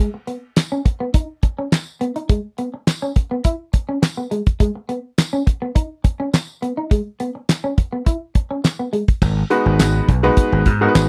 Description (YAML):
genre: early-eighties boogie funk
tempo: 104 BPM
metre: 4/4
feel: straight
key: unclear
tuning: A4 = 441 Hz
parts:
  - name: electric guitar at the edge of break-up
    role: riff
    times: 0.0-9.0 s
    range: G#3 to E4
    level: -26 LUFS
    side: equal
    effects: analog chorus
  - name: damped 70s drum kit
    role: drums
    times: 0.3-11.1 s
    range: crash cymbal, handclaps, hi-hat, kick drum, snare drum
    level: -18 LUFS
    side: equal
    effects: none
  - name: tambourine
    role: percussion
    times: 0.6-11.1 s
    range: none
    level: -35 LUFS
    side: equal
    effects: none
  - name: gritty slap bass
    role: bass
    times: 9.2-11.1 s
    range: G#1 to G#2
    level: -19 LUFS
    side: equal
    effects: overdrive
  - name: clear baby grand piano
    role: accompaniment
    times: 9.5-11.1 s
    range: G#3 to B4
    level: -19 LUFS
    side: equal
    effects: none
room: little or no reverb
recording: dry, close 1970s-style studio recording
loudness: -19 LUFS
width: mono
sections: 0.0-9.2 A section; 9.2-11.1 B section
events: none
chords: 0.0 G#m (rootless); 2.3 C#7(no3); 4.6 G#m (rootless); 6.9 C#7(no3); 9.2 G#m7